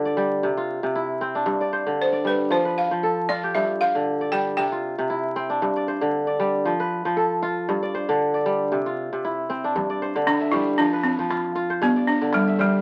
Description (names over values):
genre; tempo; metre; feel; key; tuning
west african traditional, West African string and xylophone music; 116 BPM; 4/4; swing 54% on 16ths; G mixolydian; A4 = 441 Hz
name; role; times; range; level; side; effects
kora; arpeggios; 0.0-12.8 s; G2 to E5; -25 LUFS; equal; none
balafon; melody; 2.0-5.3, 10.3-12.8 s; G3 to G5; -25 LUFS; equal; none
calabash; percussion; 9.8-12.7 s; none; -36 LUFS; equal; none
room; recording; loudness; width
moderate studio reverb, RT60 0.6 s; very old 78 rpm record, vinyl crackle, nothing above 10.5 kHz; -23 LUFS; mono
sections
0.0-9.8 A section; 9.8-12.8 A section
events
none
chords
0.4 C; 1.5 G5; 2.5 F; 3.5 G5; 4.6 C; 5.6 G5; 6.7 F; 7.7 G5; 8.7 C; 9.8 G5; 10.8 F5; 11.8 G5